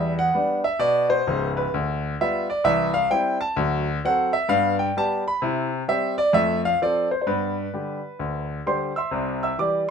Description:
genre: jazz, stride piano.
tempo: 130 BPM.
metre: 4/4.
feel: swing 65% on 8ths.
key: C major.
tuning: A4 = 440 Hz.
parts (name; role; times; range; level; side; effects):
clear concert grand piano; solo; 0.0-9.9 s; C#1 to E6; -21 LUFS; equal; none.
room: light reverb.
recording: minimal, uncompressed stereo recording.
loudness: -21 LUFS.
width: side -6 dB against mid.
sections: 0.0-9.1 A section.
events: none.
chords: 0.0 Em7; 1.7 G7/D; 2.7 C; 3.6 D7; 4.5 G; 5.4 C; 6.3 F; 7.3 G; 9.1 C.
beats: 0.36 0.82 1.28 | 1.74 2.20 2.66 3.12 | 3.58 4.04 4.50 4.96 | 5.42 5.88 6.34 6.80 | 7.26 7.72 8.18 8.64 | 9.10 9.56.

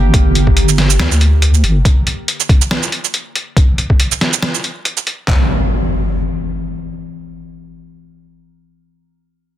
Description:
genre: deep dubstep.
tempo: 140 BPM.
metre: 4/4.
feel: swing 56% on 16ths, half-time.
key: G minor.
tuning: A4 = 440 Hz.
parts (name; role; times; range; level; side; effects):
deep soft wobble bass; bass; 0.0-1.8 s; G1 to D2; -11 LUFS; equal; chorus.
impact; sound effects; 0.0-0.1, 5.3-8.7 s; none; -19 LUFS; left 1 dB; none.
trip hop sampler-style drum kit; drums; 0.1-5.4 s; handclaps, kick drum; -12 LUFS; equal; overdrive.
trip hop sampler-style drum kit; drums; 0.1-5.2 s; hi-hat, shaker, snare drum; -16 LUFS; right 2 dB; overdrive.
room: little or no reverb.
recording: dense, heavily limited modern master.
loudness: -12 LUFS.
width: side -13 dB against mid.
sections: 0.0-5.3 A section; 5.3-8.7 B section.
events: filter sweep on wobble bass 0.0-1.9.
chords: none.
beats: | 0.14 0.56 0.99 1.42 | 1.85 2.28 2.71 3.14 | 3.56 3.99 4.42 4.85 | 5.28 5.71 6.14 6.57 | 6.99 7.42 7.85 8.28.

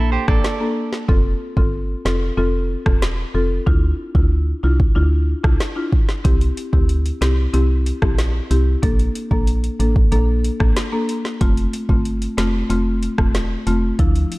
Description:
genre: dancehall.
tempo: 93 BPM.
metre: 4/4.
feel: straight.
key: unclear.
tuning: A4 = 440 Hz.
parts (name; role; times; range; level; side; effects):
clean electric guitar; arpeggios; 0.0-1.1 s; E4 to D5; -25 LUFS; right 7 dB; none.
woody FM bass; bass; 0.0-14.2 s; E1 to D2; -19 LUFS; equal; none.
buzzing marimba with medium mallets; accompaniment; 0.3-14.2 s; F3 to A4; -23 LUFS; left 2 dB; sidechain pumping.
afro-pop drum kit; drums; 0.3-14.4 s; hi-hat, kick drum, rim click, snare drum; -19 LUFS; equal; none.
room: little or no reverb.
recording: dark, warm production.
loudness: -16 LUFS.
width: side -20 dB against mid.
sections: 0.0-14.4 A section.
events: none.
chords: 0.0 Bbmaj7; 1.1 F; 3.7 Dmadd9; 6.2 C; 8.8 Bbmaj7; 11.4 F.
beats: 0.44 | 1.09 1.73 2.38 3.02 | 3.67 4.31 4.96 5.60 | 6.25 6.89 7.54 8.18 | 8.83 9.47 10.12 10.77 | 11.41 12.05 12.70 13.35 | 13.99.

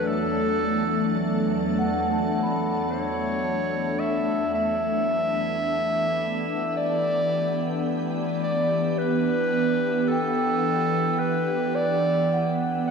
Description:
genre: ambient.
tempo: 54 BPM.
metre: 4/4.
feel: straight.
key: E minor.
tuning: A4 = 440 Hz.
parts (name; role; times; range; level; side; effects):
bright clarinet; melody; 0.0-12.9 s; A4 to F#5; -26 LUFS; equal; diffuse ambient delay.
soft additive organ-like pad; sustained chords; 0.0-12.9 s; E2 to A4; -25 LUFS; equal; ensemble chorus, built-in reverb.
vibraphone with medium mallets; arpeggios; 0.0-12.9 s; F#5 to B5; -32 LUFS; left 1 dB; diffuse ambient delay.
room: wet concert hall reverb, RT60 2.1 s.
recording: dark, warm production.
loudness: -22 LUFS.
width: side -5 dB against mid.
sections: 0.0-12.9 A section.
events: none.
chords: 0.0 F#m7/E; 4.6 Em7.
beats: | 0.11 1.22 2.33 3.45 | 4.56 5.67 6.78 7.89 | 9.00 10.11 11.22 12.33.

